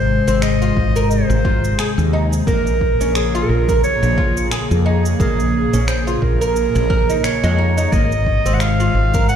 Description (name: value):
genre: organic downtempo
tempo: 88 BPM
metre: 4/4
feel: swing 57% on 16ths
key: Bb minor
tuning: A4 = 440 Hz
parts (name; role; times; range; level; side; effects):
- clear clarinet; melody; 0.0-9.4 s; Ab4 to Gb5; -21 LUFS; right 2 dB; digital delay, shimmer reverb
- airy breathy pad; sustained chords; 0.0-9.4 s; C3 to Ab4; -23 LUFS; left 1 dB; chorus, sidechain pumping, shimmer reverb
- woody fretless electric bass; bass; 0.0-9.4 s; Ab1 to F2; -18 LUFS; equal; sidechain pumping
- oud; arpeggios; 0.3-9.3 s; Ab3 to Bb4; -24 LUFS; equal; digital delay, shimmer reverb
- electronic shaker and finger snaps; drums; 0.3-9.4 s; none; -28 LUFS; right 1 dB; none
- electronic kick drum; drums; 0.8-9.3 s; none; -19 LUFS; equal; none
room: light reverb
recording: played on a big sound system in a bare room, stone room reverb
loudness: -14 LUFS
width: side -8 dB against mid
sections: 0.0-9.4 A section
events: none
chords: 0.0 Ab; 2.5 Bbm7; 7.9 Ab